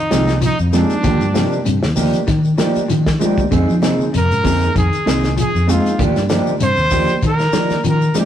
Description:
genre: afrobeat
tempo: 97 BPM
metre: 4/4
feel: swing 54% on 16ths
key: unclear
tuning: A4 = 440 Hz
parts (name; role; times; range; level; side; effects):
- bright trumpet; melody; 0.0-8.3 s; D4 to C5; -20 LUFS; equal; none
- electric guitar through a small old amp; arpeggios; 0.0-8.3 s; C3 to Ab3; -23 LUFS; left 3 dB; slapback echo
- barky tine electric piano; accompaniment; 0.1-8.3 s; F3 to Ab4; -27 LUFS; left 2 dB; overdrive
- mellow electric guitar; stabs; 0.1-8.3 s; F3 to Ab4; -20 LUFS; right 3 dB; none
- fingered electric bass; bass; 0.1-8.1 s; C2 to F3; -18 LUFS; equal; none
- warm soul drum kit; drums; 0.1-8.3 s; hi-hat, kick drum, snare drum; -22 LUFS; equal; none
- shekere; percussion; 0.1-8.3 s; none; -27 LUFS; left 2 dB; none
- congas; percussion; 0.4-8.3 s; none; -28 LUFS; equal; none
room: moderate stone room reverb, RT60 1.4 s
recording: rough rehearsal-room recording, warm saturation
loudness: -13 LUFS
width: side -10 dB against mid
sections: 0.0-8.3 A section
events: none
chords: 0.0 Ebmaj9; 3.5 Fm7; 6.0 Ebmaj9

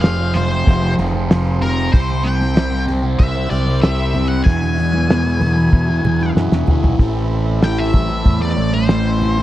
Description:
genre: psychedelic rock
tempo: 95 BPM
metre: 4/4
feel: straight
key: unclear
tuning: A4 = 440 Hz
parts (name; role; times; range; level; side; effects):
- octave-fuzz lead guitar; melody; 0.0-9.4 s; Bb4 to G#5; -23 LUFS; left 2 dB; wah, distortion, slapback echo
- overdriven combo organ; sustained chords; 0.0-9.4 s; C4 to B5; -30 LUFS; right 5 dB; none
- fuzz guitar; riff; 0.0-9.4 s; E2 to C4; -19 LUFS; equal; distortion, phaser
- fuzz fingered electric bass; bass; 0.0-9.4 s; F1 to F#2; -19 LUFS; equal; overdrive
- cloth-damped thuddy drum kit; drums; 0.0-9.0 s; hi-hat, kick drum, snare drum, toms; -13 LUFS; equal; vintage 12-bit sampler grit
- congas; percussion; 0.4-9.4 s; none; -30 LUFS; right 1 dB; none
room: little or no reverb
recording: dry, close 1970s-style studio recording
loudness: -14 LUFS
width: side -14 dB against mid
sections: 0.0-7.0 A section; 7.0-9.4 B section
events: drum fill 5.7-7.0; lead electric guitar solo 7.0-9.4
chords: 0.0 Fm; 1.9 C; 4.5 Eadd9; 7.0 Amadd9

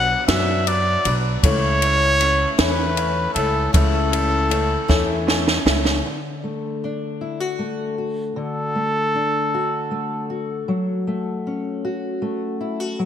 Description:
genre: indie folk with a building arrangement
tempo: 52 BPM (dotted quarters)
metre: 6/8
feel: straight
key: unclear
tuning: A4 = 440 Hz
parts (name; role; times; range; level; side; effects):
- clear trumpet; melody; 0.0-10.3 s; A4 to F#5; -21 LUFS; equal; ping-pong delay
- bright baby grand piano; accompaniment; 0.0-6.1 s; B1 to C#5; -30 LUFS; right 5 dB; none
- picked old ladder-braced acoustic guitar; accompaniment; 0.0-6.1 s; B2 to F#4; -26 LUFS; left 8 dB; lush chorus
- upright bass; bass; 0.0-6.0 s; B1 to F#2; -23 LUFS; right 1 dB; none
- compact cocktail drum kit; drums; 0.3-6.0 s; kick drum, ride cymbal, snare drum; -21 LUFS; right 1 dB; gated reverb
- fingerpicked steel-string acoustic guitar; accompaniment; 6.1-13.1 s; D3 to F#4; -24 LUFS; left 2 dB; wide subtle chorus
room: moderate lush hall reverb, RT60 2.1 s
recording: bright 1980s-style digital production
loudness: -18 LUFS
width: side -9 dB against mid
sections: 0.0-6.1 A section; 6.1-13.1 B section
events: drum fill 4.9-6.1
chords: 0.0 Bm; 1.4 A/C#; 6.1 D; 10.7 F#m

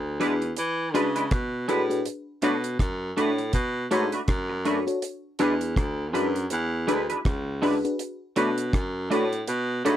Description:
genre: lovers rock reggae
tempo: 81 BPM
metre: 4/4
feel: swing 58% on 16ths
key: B dorian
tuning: A4 = 439 Hz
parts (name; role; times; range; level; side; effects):
- clear baritone saxophone; bass; 0.0-10.0 s; C#2 to E3; -28 LUFS; equal; none
- FM electric piano with soft pad layer; accompaniment; 0.2-10.0 s; D4 to C#5; -26 LUFS; left 2 dB; chorus, tremolo
- twangy electric guitar; stabs; 0.2-10.0 s; G#3 to B4; -27 LUFS; right 2 dB; analog chorus
- deep reggae drum kit; drums; 0.2-10.0 s; hi-hat, kick drum, rim click; -28 LUFS; equal; none
room: little or no reverb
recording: dry, close 1970s-style studio recording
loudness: -24 LUFS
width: side -11 dB against mid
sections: 0.0-10.0 A section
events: none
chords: 0.0 E7; 2.1 Bm7; 5.0 E7; 8.0 Bm7

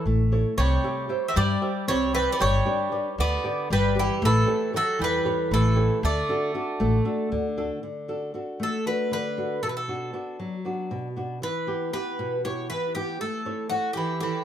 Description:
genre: greek folk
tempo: 233 BPM (eighths)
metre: 7/8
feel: straight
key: D major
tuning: A4 = 440 Hz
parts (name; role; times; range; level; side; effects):
- Greek bouzouki; melody; 0.0-14.4 s; F#4 to E5; -28 LUFS; left 1 dB; none
- Greek bouzouki; second line; 0.0-7.3, 14.0-14.4 s; E3 to C4; -30 LUFS; right 4 dB; none
- flamenco guitar; accompaniment; 0.0-14.4 s; B2 to E5; -28 LUFS; left 1 dB; none
- upright bass; bass; 0.1-7.7 s; G1 to G2; -24 LUFS; equal; none
room: light reverb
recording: close, detailed microphones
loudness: -23 LUFS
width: side -10 dB against mid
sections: 0.0-7.8 A section; 7.8-14.4 B section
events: speeding up 0.0-14.4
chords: 0.0 A; 0.6 C; 2.4 G; 4.2 A7; 6.0 D; 9.6 Bm; 11.4 Em; 13.2 A

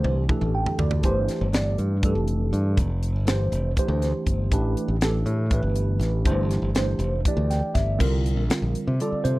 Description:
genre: electric jazz fusion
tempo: 241 BPM (eighths)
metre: 7/8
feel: straight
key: unclear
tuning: A4 = 440 Hz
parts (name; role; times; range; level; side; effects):
- tine electric piano; accompaniment; 0.0-9.4 s; D3 to G5; -26 LUFS; right 1 dB; phaser
- modern bright fingered electric bass; bass; 0.0-9.4 s; F1 to C3; -24 LUFS; equal; none
- tight funk drum kit; drums; 0.0-9.4 s; crash cymbal, hi-hat, kick drum, snare drum, toms; -25 LUFS; equal; none
room: little or no reverb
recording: dry, close 1970s-style studio recording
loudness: -21 LUFS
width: side -19 dB against mid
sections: 0.0-8.0 A section; 8.0-9.4 B section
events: drum fill 0.0-1.0; tine electric piano fill 0.3-1.0, 7.3-8.0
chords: 0.0 D9sus4; 1.0 G9sus4; 4.5 A9sus4; 6.3 G9sus4; 8.0 C7sus2

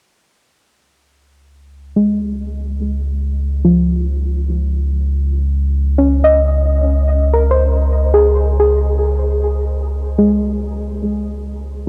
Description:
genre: ambient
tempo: free time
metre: none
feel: none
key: Db major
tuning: A4 = 440 Hz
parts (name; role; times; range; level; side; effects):
- deep rumbling drone; bass; 2.1-11.9 s; Db2; -19 LUFS; equal; built-in reverb
- soft round pluck; arpeggios; 2.0-11.9 s; F3 to Eb5; -18 LUFS; equal; chorus, diffuse ambient delay
room: moderate huge ambient reverb, RT60 8.3 s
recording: dark, warm production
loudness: -16 LUFS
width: mono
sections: 0.4-11.9 A section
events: none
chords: 0.4 Dbmaj7

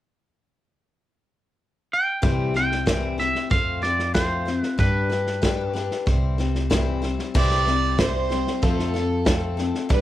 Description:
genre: honky-tonk and classic country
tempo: 94 BPM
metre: 4/4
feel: straight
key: C major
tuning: A4 = 440 Hz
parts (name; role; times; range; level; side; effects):
- twangy electric guitar; melody; 1.9-5.7 s; B4 to G5; -25 LUFS; right 1 dB; cassette tape
- picked steel-string acoustic guitar; accompaniment; 2.2-10.0 s; C3 to C5; -26 LUFS; left 6 dB; cassette tape, plate reverb
- upright bass; bass; 2.2-10.0 s; C2 to G2; -27 LUFS; right 1 dB; none
- natural country drum kit; drums; 2.2-10.0 s; crash cymbal, hi-hat, kick drum, snare drum; -24 LUFS; equal; cassette tape
- rich fiddle; second line; 7.4-10.0 s; A4 to D5; -26 LUFS; right 5 dB; cassette tape, plate reverb, tape echo
room: moderate small room reverb, RT60 0.5 s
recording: home recording on cassette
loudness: -20 LUFS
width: side -13 dB against mid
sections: 0.0-2.2 A section; 2.2-7.3 B section; 7.3-10.0 C section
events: fiddle solo 7.3-10.0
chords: 0.0 N.C.; 2.2 C; 3.5 F; 4.8 G; 6.1 C; 8.6 F

